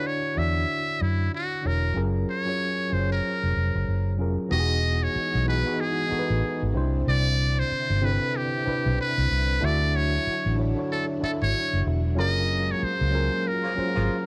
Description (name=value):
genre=R&B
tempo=94 BPM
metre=4/4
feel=swing 60% on 16ths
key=unclear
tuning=A4 = 440 Hz
part: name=trumpet with metal mute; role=melody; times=0.0-14.3 s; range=E4 to E5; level=-30 LUFS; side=equal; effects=cassette tape
part: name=tine electric piano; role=accompaniment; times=0.0-14.3 s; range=C3 to E5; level=-32 LUFS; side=equal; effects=cassette tape
part: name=vintage muted fingered electric bass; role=bass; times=0.4-14.1 s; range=E1 to F#2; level=-27 LUFS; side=equal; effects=none
part: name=string machine, full ensemble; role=sustained chords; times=4.5-14.3 s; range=D3 to F#4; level=-40 LUFS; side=equal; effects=none
part: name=warm horn section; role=stabs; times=13.6-14.2 s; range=C#3 to E#4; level=-37 LUFS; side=equal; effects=cassette tape
room=small room ambience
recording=home recording on cassette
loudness=-25 LUFS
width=mono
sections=0.0-4.5 A section; 4.5-14.3 B section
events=band accent 12.2-14.3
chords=0.0 Dmaj9; 1.9 F#maj9; 4.5 Emaj9; 6.7 Cmaj9; 9.6 Dmaj9; 12.2 F#maj9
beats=0.04 0.67 1.31 | 1.95 2.59 3.23 3.87 | 4.50 5.14 5.78 6.42 | 7.06 7.69 8.33 8.97 | 9.61 10.25 10.89 11.52 | 12.16 12.80 13.44 14.08